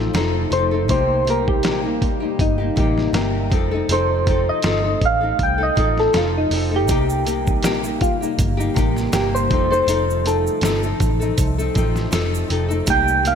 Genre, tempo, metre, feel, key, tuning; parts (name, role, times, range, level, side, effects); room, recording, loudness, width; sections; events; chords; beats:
indie pop, bedroom pop; 80 BPM; 4/4; swing 55% on 16ths; A4 = 441 Hz
nylon-string guitar; accompaniment; 0.0-13.3 s; C3 to A4; -24 LUFS; left 4 dB; wide subtle chorus, vibrato effect, slapback echo
warbly tape-like pad; sustained chords; 0.0-13.3 s; C3 to Eb4; -28 LUFS; right 1 dB; chorus, built-in reverb
vintage muted picked electric bass; bass; 0.0-13.3 s; F1 to C2; -23 LUFS; equal
dusty soul sampler-style drum kit; drums; 0.1-13.3 s; hi-hat, kick drum, snare drum; -22 LUFS; right 1 dB; overdrive
soft electric-piano-like synth keys; melody; 0.5-13.3 s; Eb4 to G5; -21 LUFS; equal; lush chorus, slapback echo, ping-pong delay
tube shaker; percussion; 6.9-13.3 s; -37 LUFS; right 7 dB
moderate lush hall reverb, RT60 2.2 s; big arena sound; -16 LUFS; side -7 dB against mid
0.0-13.3 A section
synth keys solo 0.0-13.3
0.0 F7; 0.9 Cm7; 3.5 F7; 6.9 Cm7; 9.5 F7
0.14 | 0.89 1.64 2.39 3.14 | 3.89 4.64 5.39 6.14 | 6.89 7.64 8.38 9.13 | 9.88 10.63 11.38 12.13 | 12.88